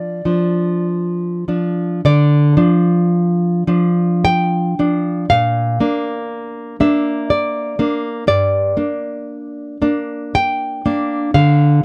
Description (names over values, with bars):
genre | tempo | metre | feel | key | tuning
romantic duo for flute and classical guitar | 49-62 BPM | 3/4 | rubato | D minor | A4 = 440 Hz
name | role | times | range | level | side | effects
mellow concert flute | melody | 0.0-0.9 s | D5 | -30 LUFS | equal | none
nylon-string guitar | accompaniment | 0.0-11.8 s | G2 to G5 | -17 LUFS | equal | none
room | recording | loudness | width
little or no reverb | dry, close 1970s-style studio recording | -17 LUFS | mono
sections
0.0-2.0 A section; 2.0-11.8 A section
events
none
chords
0.0 Dm; 5.3 Bb; 8.3 Gm; 11.3 Dm